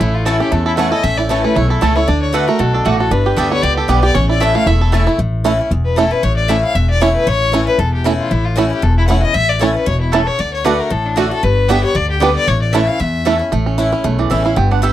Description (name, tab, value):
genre	bluegrass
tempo	231 BPM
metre	4/4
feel	swing 55% on 8ths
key	A mixolydian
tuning	A4 = 440 Hz
part	rich fiddle	melody	0.0-13.4 s	D4 to F#5	-19 LUFS	left 4 dB	none
part	picked swing-style acoustic guitar	accompaniment	0.0-14.9 s	E2 to G4	-20 LUFS	left 3 dB	none
part	bluegrass banjo	arpeggios	0.0-14.9 s	E3 to A4	-17 LUFS	right 6 dB	none
part	upright bass	bass	0.0-14.9 s	E1 to E2	-16 LUFS	equal	none
part	mandolin	stabs	0.3-5.0, 9.6-14.9 s	A3 to A5	-20 LUFS	right 6 dB	none
room	little or no reverb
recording	dry, close 1970s-style studio recording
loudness	-12 LUFS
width	side -12 dB against mid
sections	0.0-5.2 A section; 5.2-13.5 A section; 13.5-14.9 B section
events	mandolin solo 13.5-14.9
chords	0.0 A; 2.1 D; 3.1 G; 4.2 A; 10.4 D; 11.4 G; 12.5 A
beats	| 0.00 0.26 0.52 0.78 | 1.04 1.30 1.56 1.82 | 2.08 2.34 2.60 2.86 | 3.12 3.38 3.63 3.89 | 4.15 4.41 4.67 4.93 | 5.19 5.45 5.71 5.97 | 6.23 6.49 6.75 7.01 | 7.27 7.53 7.79 8.05 | 8.31 8.57 8.83 9.09 | 9.35 9.61 9.87 10.13 | 10.39 10.65 10.91 11.18 | 11.44 11.70 11.96 12.22 | 12.48 12.74 13.00 13.26 | 13.53 13.79 14.05 14.31 | 14.57 14.83